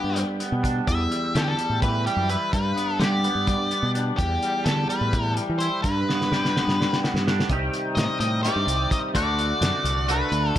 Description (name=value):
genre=psychedelic rock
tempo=254 BPM (eighths)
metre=7/8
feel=straight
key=unclear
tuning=A4 = 441 Hz
part: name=octave-fuzz lead guitar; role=melody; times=0.0-10.6 s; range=G4 to E5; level=-26 LUFS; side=left 2 dB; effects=distortion, slapback echo
part: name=twangy electric guitar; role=riff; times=0.0-10.6 s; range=E2 to G4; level=-26 LUFS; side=right 1 dB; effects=rotary speaker
part: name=growling fingered electric bass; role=bass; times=0.0-10.5 s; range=C2 to G3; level=-26 LUFS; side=equal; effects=overdrive
part: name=cloth-damped thuddy drum kit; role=drums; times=0.2-10.6 s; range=hi-hat, kick drum, snare drum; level=-27 LUFS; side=equal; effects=none
room=small room reverb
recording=none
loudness=-21 LUFS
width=side -11 dB against mid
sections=0.0-7.5 A section; 7.5-10.6 B section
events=drum fill 6.1-7.5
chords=0.0 G; 0.9 Em; 2.5 G; 4.2 Em; 5.8 G; 7.5 Cm; 9.1 D